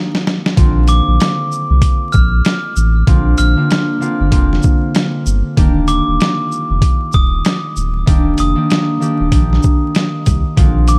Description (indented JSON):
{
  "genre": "hip hop, boom-bap hip-hop",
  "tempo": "96 BPM",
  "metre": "4/4",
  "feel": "swing 60% on 16ths",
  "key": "Eb major",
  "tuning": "A4 = 440 Hz",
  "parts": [
    { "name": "concert harp", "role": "accompaniment", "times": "0.0-11.0 s", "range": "D3 to G4", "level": "-21 LUFS", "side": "equal", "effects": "cassette tape, high-pass filter, low-pass filter" },
    { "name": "boom bap sampler-style drum kit", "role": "drums", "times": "0.1-11.0 s", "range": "hi-hat, kick drum, shaker, snare drum", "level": "-16 LUFS", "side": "equal", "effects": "none" },
    { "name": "saturated sub bass", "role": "bass", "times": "0.6-11.0 s", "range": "D1 to C2", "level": "-16 LUFS", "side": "equal", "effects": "none" },
    { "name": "glockenspiel with hard plastic mallets", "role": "melody", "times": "0.9-11.0 s", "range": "D6 to F6", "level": "-24 LUFS", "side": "equal", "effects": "high-pass filter, low-pass filter, delay" }
  ],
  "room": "digital ambience",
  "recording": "vinyl crackle",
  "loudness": "-14 LUFS",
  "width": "mono",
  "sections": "0.6-11.0 A section",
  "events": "break 0.0-0.6; drum fill 0.0-0.6",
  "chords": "0.0 Ebmaj7; 0.6 Bbadd9; 5.6 Ebmaj7"
}